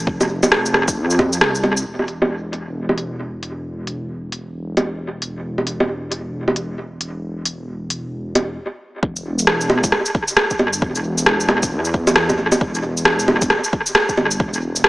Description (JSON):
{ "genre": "future garage", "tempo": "134 BPM", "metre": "4/4", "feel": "swing 61% on 16ths", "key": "unclear", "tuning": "A4 = 445 Hz", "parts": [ { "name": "swelling detuned saw bass", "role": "bass", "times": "0.0-14.9 s", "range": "E1 to F2", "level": "-24 LUFS", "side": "equal", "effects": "sidechain pumping" }, { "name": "electronic kick drum", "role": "drums", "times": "0.1-1.3, 9.0-14.5 s", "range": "none", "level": "-22 LUFS", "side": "equal", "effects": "overdrive" }, { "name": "organic electronic drum kit", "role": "drums", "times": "0.2-14.9 s", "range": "bongos, hi-hat, rim click, shaker", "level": "-16 LUFS", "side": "equal", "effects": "low-pass filter on perc, low-pass filter on snare, low-pass filter on hats, low-pass filter on room, dub echo" } ], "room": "moderate plate reverb, RT60 1.9 s", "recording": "echo-heavy mix, small speaker sound", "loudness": "-17 LUFS", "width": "side -19 dB against mid", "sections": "0.0-1.9 A section; 1.9-9.0 B section; 9.0-14.9 C section", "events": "kick drops out 1.4-1.9; stop 8.6-9.0", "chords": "none" }